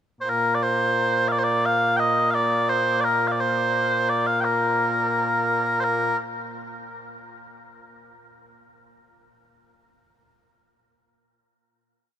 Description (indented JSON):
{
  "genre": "scottish traditional, Scottish pipe music",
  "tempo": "86 BPM",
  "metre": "2/4",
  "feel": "straight",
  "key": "Bb major",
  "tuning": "A4 = 440 Hz",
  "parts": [
    { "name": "mellow small bagpipes", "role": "solo", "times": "0.2-6.2 s", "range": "Bb2 to G5", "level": "-20 LUFS", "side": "equal", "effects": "none" }
  ],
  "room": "moderate huge ambient reverb, RT60 7.4 s",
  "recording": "minimal, uncompressed stereo recording",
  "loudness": "-20 LUFS",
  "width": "side -9 dB against mid",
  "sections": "0.0-0.3 pickup bar; 0.3-5.8 A section; 5.8-7.2 final note",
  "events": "none",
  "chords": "none"
}